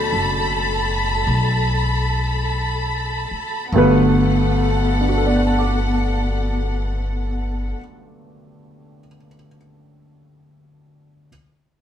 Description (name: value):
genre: jazz ballad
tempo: 47-54 BPM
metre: 4/4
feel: swing 68% on 8ths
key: G major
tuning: A4 = 440 Hz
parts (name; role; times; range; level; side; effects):
- clear concert grand piano; accompaniment; 0.0-11.3 s; G2 to D6; -20 LUFS; equal; none
- warm symphonic string section; sustained chords; 0.0-7.7 s; B3 to B5; -22 LUFS; equal; none
- upright bass; bass; 0.0-7.7 s; F#1 to B1; -22 LUFS; left 1 dB; none
room: moderate studio reverb, RT60 0.8 s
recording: band playing live in one room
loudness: -17 LUFS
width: side -9 dB against mid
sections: 0.0-3.7 A section; 3.7-8.8 B section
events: slowing down 0.0-3.7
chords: 0.0 Gmaj9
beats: 0.14 1.28 2.48 | 3.73 5.00 6.26 7.51